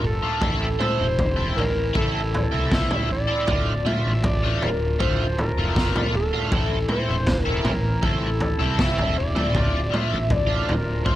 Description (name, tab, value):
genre	psychedelic rock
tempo	79 BPM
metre	4/4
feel	straight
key	D minor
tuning	A4 = 440 Hz
part	overdriven synth lead	melody	0.0-11.2 s	A4 to E5	-27 LUFS	equal	distortion, chorus, phaser, tape echo
part	clear woodwind section	sustained chords	0.0-11.2 s	E3 to F4	-35 LUFS	right 3 dB	none
part	biting overdriven guitar	riff	0.0-11.2 s	A2 to A4	-27 LUFS	equal	rotary speaker
part	fuzz picked electric bass	bass	0.0-11.2 s	D1 to C2	-26 LUFS	equal	overdrive
part	raw garage drum kit	drums	0.4-11.2 s	kick drum, snare drum, toms	-24 LUFS	equal	none
room	light reverb, small room ambience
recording	none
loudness	-20 LUFS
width	side -14 dB against mid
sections	0.0-11.2 A section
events	none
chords	0.4 Am; 3.5 Dm; 6.5 Am; 9.5 Dm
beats	| 0.41 1.18 1.95 2.71 | 3.48 4.24 5.00 5.76 | 6.52 7.28 8.04 8.79 | 9.55 10.30 11.06